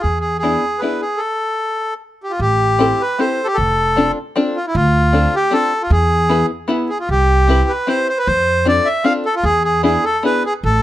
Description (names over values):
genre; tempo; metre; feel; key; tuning
musette waltz; 153 BPM; 3/4; rubato; unclear; A4 = 440 Hz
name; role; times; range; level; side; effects
accordion; melody; 0.0-10.8 s; E4 to F5; -16 LUFS; equal; plate reverb
upright bass; bass; 0.0-10.8 s; F1 to F2; -17 LUFS; right 1 dB; none
open-back banjo; accompaniment; 0.4-10.4 s; B3 to B4; -18 LUFS; left 2 dB; none
room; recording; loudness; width
moderate small room reverb, RT60 0.5 s; none; -14 LUFS; side -14 dB against mid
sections
0.0-2.4 A section; 2.4-10.8 A section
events
stop 1.2-2.4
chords
0.0 E7; 1.2 N.C.; 2.4 Am7; 3.6 F6; 4.7 Dm7; 5.9 E; 7.1 Cmaj7; 8.3 F6; 9.4 E7